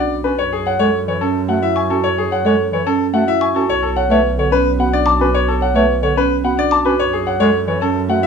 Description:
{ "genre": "classical, minimalist pattern music", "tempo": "109 BPM", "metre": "3/4", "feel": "straight", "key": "F# minor", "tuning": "A4 = 442 Hz", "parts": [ { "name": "bright grand piano", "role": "melody", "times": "0.0-8.3 s", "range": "G#4 to A5", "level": "-18 LUFS", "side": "left 7 dB", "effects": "none" }, { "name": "marimba with soft mallets", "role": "arpeggios", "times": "0.0-8.3 s", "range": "C#4 to C#5", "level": "-19 LUFS", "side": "right 9 dB", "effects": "none" }, { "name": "rich double bass", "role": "bass", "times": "0.0-8.3 s", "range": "B1 to F#2", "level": "-23 LUFS", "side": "right 1 dB", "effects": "none" }, { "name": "mellow bass clarinet", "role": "accompaniment", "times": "0.2-8.2 s", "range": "D3 to C#4", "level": "-20 LUFS", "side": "equal", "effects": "none" }, { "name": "xylophone with soft rubber mallets", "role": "arpeggios", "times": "1.8-6.9 s", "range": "C#6 to D6", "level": "-21 LUFS", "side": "left 3 dB", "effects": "none" } ], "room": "moderate large studio reverb, RT60 0.9 s", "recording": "minimal, uncompressed stereo recording", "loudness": "-14 LUFS", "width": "side -6 dB against mid", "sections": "0.0-8.3 A section", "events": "none", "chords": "0.4 F#madd9; 3.7 Bm7; 7.0 F#m", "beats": "| 0.38 0.93 1.48 | 2.04 2.58 3.13 | 3.69 4.24 4.79 | 5.34 5.89 6.44 | 6.99 7.54 8.09" }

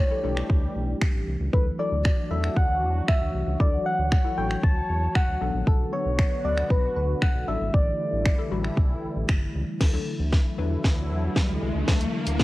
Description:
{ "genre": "dance-pop", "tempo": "116 BPM", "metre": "4/4", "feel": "straight", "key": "D major", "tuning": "A4 = 440 Hz", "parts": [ { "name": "soft struck synth lead", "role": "melody", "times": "0.0-9.3 s", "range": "A4 to A5", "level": "-28 LUFS", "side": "equal", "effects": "chorus, cassette tape" }, { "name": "sweeping resonant pad", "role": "sustained chords", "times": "0.0-12.4 s", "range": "D3 to C#5", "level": "-32 LUFS", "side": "equal", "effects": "chorus, sidechain pumping, cassette tape" }, { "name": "round analog bass", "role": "bass", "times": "0.0-12.4 s", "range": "G1 to E2", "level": "-28 LUFS", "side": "equal", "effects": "sidechain pumping" }, { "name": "hollow square pluck", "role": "accompaniment", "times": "0.1-12.2 s", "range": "F#3 to B4", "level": "-34 LUFS", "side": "left 7 dB", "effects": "chorus, sidechain pumping, cassette tape" }, { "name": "house drum kit", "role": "drums", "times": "0.4-12.4 s", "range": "crash cymbal, finger snaps, hi-hat, kick drum, snare drum", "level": "-22 LUFS", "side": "equal", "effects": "cassette tape" }, { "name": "riser", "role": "sound effects", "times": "10.5-12.4 s", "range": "none", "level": "-32 LUFS", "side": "left 1 dB", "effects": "none" } ], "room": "digital ambience", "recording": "home recording on cassette, lossy compression artefacts", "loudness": "-22 LUFS", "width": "side -18 dB against mid", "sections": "0.0-9.8 A section; 9.8-12.4 B section", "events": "build-up 9.8-12.4; drum fill 9.8-12.4; riser 10.5-12.4", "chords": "0.0 A7sus4; 1.5 Dadd9; 5.4 Bm7; 7.5 A7sus4; 9.8 Dadd9", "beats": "0.50 1.01 | 1.53 2.05 2.57 3.08 | 3.60 4.12 4.64 5.15 | 5.67 6.19 6.70 7.22 | 7.74 8.26 8.77 9.29 | 9.81 10.32 10.84 11.36 | 11.88 12.39" }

